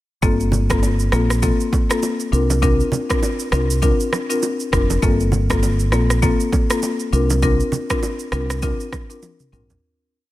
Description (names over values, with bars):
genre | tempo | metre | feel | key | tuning
afrobeats | 100 BPM | 4/4 | swing 58% on 16ths | unclear | A4 = 440 Hz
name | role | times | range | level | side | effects
marimba with medium mallets | accompaniment | 0.2-9.8 s | Bb3 to Bb4 | -21 LUFS | left 3 dB | none
deep dub fingered electric bass | bass | 0.2-9.8 s | F1 to C2 | -19 LUFS | equal | none
afro-pop drum kit | drums | 0.2-9.8 s | kick drum, rim click, shaker, toms | -21 LUFS | right 1 dB | none
congas and bongos | percussion | 0.2-9.8 s | none | -27 LUFS | right 4 dB | none
room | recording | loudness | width
little or no reverb | none | -16 LUFS | side -15 dB against mid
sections
0.2-9.8 verse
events
fade-out 7.4-9.8; drum fill 9.2-9.8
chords
0.2 Gm11; 2.3 C9sus4; 5.0 Gm11; 7.1 C9sus4